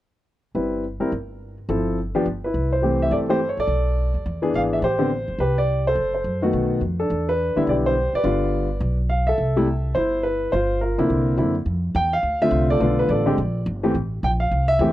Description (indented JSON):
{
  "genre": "jazz piano trio",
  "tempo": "210 BPM",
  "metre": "4/4",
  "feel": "swing 61% on 8ths",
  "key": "C major, F major from 11.7 s",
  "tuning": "A4 = 440 Hz",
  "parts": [
    { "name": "warm concert grand piano", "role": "melody", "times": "0.5-14.9 s", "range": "C3 to G5", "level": "-20 LUFS", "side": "equal", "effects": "none" },
    { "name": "upright bass", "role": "bass", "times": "0.5-14.9 s", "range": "F#1 to F#2", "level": "-24 LUFS", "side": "equal", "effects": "none" }
  ],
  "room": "little or no reverb",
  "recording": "dry, close 1970s-style studio recording",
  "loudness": "-19 LUFS",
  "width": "side -14 dB against mid",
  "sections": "0.3-2.5 A section; 2.5-11.7 B section; 11.7-14.9 C section",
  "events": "none",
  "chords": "0.3 Cmaj7; 2.5 C6; 3.7 B7#9; 4.2 E7; 4.8 Am11; 6.0 F#dim; 6.5 B7; 7.1 Em7; 8.2 G7; 9.4 C6; 10.5 Gm7; 11.1 C9; 11.7 F6; 12.8 Bm7b5; 13.4 Bb6; 13.9 Am"
}